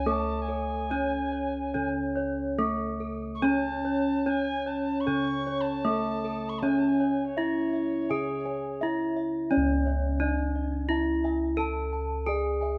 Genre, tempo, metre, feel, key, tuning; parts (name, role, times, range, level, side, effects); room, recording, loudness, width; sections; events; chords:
Javanese gamelan; 71-87 BPM; 4/4; straight; C# pelog; A4 = 440 Hz
gamelan-type bronze metallophone; melody; 0.0-12.8 s; A3 to A4; -31 LUFS; equal
mellow soprano recorder; second line; 0.0-9.1 s; C#5 to C#6; -38 LUFS; equal
gamelan-type bronze metallophone; arpeggios; 0.0-12.8 s; A4 to A5; -40 LUFS; equal
gamelan-type bossed gongs; bass; 0.0-12.8 s; C#2 to A4; -33 LUFS; equal
gamelan-type bossed gongs; arpeggios; 0.1-12.8 s; A4 to A5; -40 LUFS; equal
moderate large studio reverb, RT60 1.1 s; band playing live in one room; -28 LUFS; mono
0.0-9.5 A section; 9.5-12.8 B section